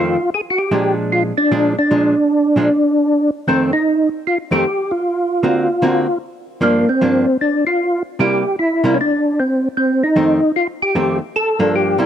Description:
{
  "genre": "jazz",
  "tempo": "152 BPM",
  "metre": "4/4",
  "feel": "swing 66% on 8ths",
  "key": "F mixolydian",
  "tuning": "A4 = 440 Hz",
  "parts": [
    { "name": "percussive tonewheel organ", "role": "melody", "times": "0.0-12.1 s", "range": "Bb3 to A4", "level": "-15 LUFS", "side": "equal", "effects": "overdrive, chorus vibrato, slow rotary speaker" },
    { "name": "archtop guitar, miked and amplified", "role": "accompaniment", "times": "0.0-12.1 s", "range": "F2 to F#4", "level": "-18 LUFS", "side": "right 1 dB", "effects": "none" }
  ],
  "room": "digital ambience",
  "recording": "dry, close 1970s-style studio recording",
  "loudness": "-14 LUFS",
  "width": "side -9 dB against mid",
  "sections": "0.0-12.1 A section",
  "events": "none",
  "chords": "0.3 Bb7; 3.5 F7; 5.0 D7alt; 6.6 Gm7; 8.2 C7; 9.8 F7; 11.3 Gm7"
}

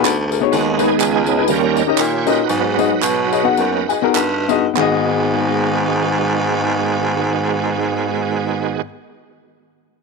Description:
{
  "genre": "uptempo gospel",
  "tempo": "94-126 BPM",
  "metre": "4/4",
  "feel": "swing 55% on 8ths",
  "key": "G# minor",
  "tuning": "A4 = 440 Hz",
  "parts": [
    { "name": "warm upright piano", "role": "accompaniment", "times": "0.0-8.8 s", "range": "G#1 to B5", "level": "-19 LUFS", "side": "left 13 dB", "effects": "none" },
    { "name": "raspy baritone saxophone", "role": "bass", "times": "0.0-8.8 s", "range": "C#2 to B2", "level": "-20 LUFS", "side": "right 1 dB", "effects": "none" },
    { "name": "handclaps and tambourine", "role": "percussion", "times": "0.0-5.1 s", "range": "none", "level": "-24 LUFS", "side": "right 5 dB", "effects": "none" },
    { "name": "bright tonewheel organ", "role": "sustained chords", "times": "0.5-8.8 s", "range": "D#3 to C#5", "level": "-20 LUFS", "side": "right 15 dB", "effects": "slow rotary speaker, overdrive, chorus vibrato" }
  ],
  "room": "light reverb",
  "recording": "1960s-style stereo with parts hard left and right",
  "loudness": "-15 LUFS",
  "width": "side -3 dB against mid",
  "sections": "0.5-4.8 A section; 4.8-9.9 B section",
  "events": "upright piano fill 0.0-0.5, 3.0-4.8; slowing down 0.5-4.8; tonewheel organ solo 0.5-4.8",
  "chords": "0.0 G#m7; 0.5 G#m/D#; 1.5 D#7; 2.5 G#m7"
}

